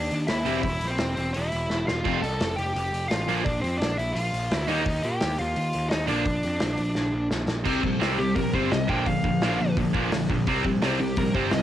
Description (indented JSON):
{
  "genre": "punk rock",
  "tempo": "171 BPM",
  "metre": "4/4",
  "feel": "straight",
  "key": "C mixolydian",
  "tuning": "A4 = 441 Hz",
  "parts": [
    { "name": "bluesy overdriven lead guitar", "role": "melody", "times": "0.0-11.6 s", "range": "C4 to A5", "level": "-28 LUFS", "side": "equal", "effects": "distortion, cassette tape, analog delay" },
    { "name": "fuzz picked electric bass", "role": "bass", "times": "0.0-11.6 s", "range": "E1 to Bb2", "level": "-29 LUFS", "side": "equal", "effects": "overdrive" },
    { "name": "loose indie drum kit", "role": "drums", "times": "0.1-11.6 s", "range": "crash cymbal, hi-hat, kick drum, snare drum", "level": "-30 LUFS", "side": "equal", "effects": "cassette tape" },
    { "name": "distorted electric guitar", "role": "riff", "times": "0.5-11.6 s", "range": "F2 to Eb4", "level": "-28 LUFS", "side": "left 8 dB", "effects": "distortion, cassette tape" },
    { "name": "distorted electric guitar", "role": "riff", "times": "0.5-11.6 s", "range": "Bb2 to F4", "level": "-27 LUFS", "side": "right 9 dB", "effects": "overdrive, cassette tape" }
  ],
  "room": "light reverb",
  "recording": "home recording on cassette",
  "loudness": "-23 LUFS",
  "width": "side -12 dB against mid",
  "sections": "0.0-7.7 A section; 7.7-11.6 B section",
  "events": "drum fill 1.7-2.0, 7.0-7.7; lead electric guitar solo 7.7-11.6",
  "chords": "0.5 C/E; 2.0 F; 3.3 Bb; 4.7 Eb; 6.1 Bb; 7.7 C5; 8.9 Bb; 10.5 C5",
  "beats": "0.29 | 0.64 0.99 1.34 1.70 | 2.05 2.40 2.75 3.10 | 3.45 3.80 4.15 4.50 | 4.86 5.21 5.56 5.91 | 6.26 6.61 6.96 7.31 | 7.66 8.01 8.36 8.71 | 9.06 9.41 9.77 10.12 | 10.47 10.82 11.17 11.52"
}